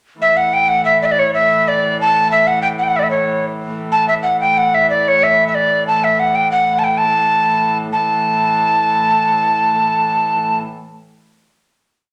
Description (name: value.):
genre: medieval dance.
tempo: 124 BPM (dotted quarters).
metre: 6/8.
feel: straight.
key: A mixolydian.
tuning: A4 = 437 Hz.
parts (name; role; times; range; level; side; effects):
breathy alto recorder; melody; 0.2-10.6 s; C#5 to A5; -15 LUFS; equal; none.
warm hurdy-gurdy; drone; 0.2-10.6 s; A2 to E3; -26 LUFS; equal; none.
room: moderate large studio reverb, RT60 0.9 s.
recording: none.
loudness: -15 LUFS.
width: mono.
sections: 0.2-7.9 A section; 7.9-9.8 final chord.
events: none.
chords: none.